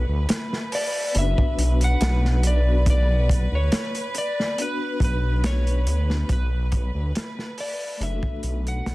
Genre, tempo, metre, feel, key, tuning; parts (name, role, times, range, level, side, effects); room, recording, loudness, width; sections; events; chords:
trip hop; 70 BPM; 4/4; straight; B minor; A4 = 440 Hz
electric slide guitar; melody; 0.0-8.9 s; B4 to F#5; -29 LUFS; left 1 dB; tape echo
clear studio violin section; sustained chords; 0.0-8.9 s; B4; -35 LUFS; right 2 dB
dark detuned saw bass; bass; 0.0-8.9 s; F#1 to D2; -21 LUFS; equal
crunchy breakbeat drum kit; drums; 0.3-8.9 s; hi-hat, kick drum, snare drum; -25 LUFS; equal
vibraphone with soft mallets; accompaniment; 1.1-8.9 s; A3 to B4; -32 LUFS; left 2 dB; tremolo
small room ambience; dense, heavily limited modern master, vinyl crackle; -20 LUFS; side -19 dB against mid
0.0-8.9 A section
fade-out 4.0-8.9
0.0 Bm; 6.3 D